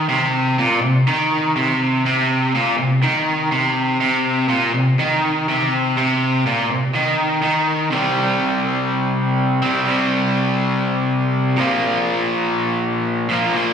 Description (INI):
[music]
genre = rock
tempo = 123 BPM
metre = 4/4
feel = straight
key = unclear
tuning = A4 = 437 Hz
[part]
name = raw garage guitar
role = solo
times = 0.0-13.7 s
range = Bb2 to C4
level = -16 LUFS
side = equal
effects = overdrive, slapback echo
[sound]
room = light reverb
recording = live gig heard through the venue's PA, recital hall reverb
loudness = -16 LUFS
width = side -7 dB against mid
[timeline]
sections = 0.0-7.9 A section; 7.9-13.7 B section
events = none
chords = 0.0 Bbsus4 (rootless); 7.9 C5; 11.6 Bb5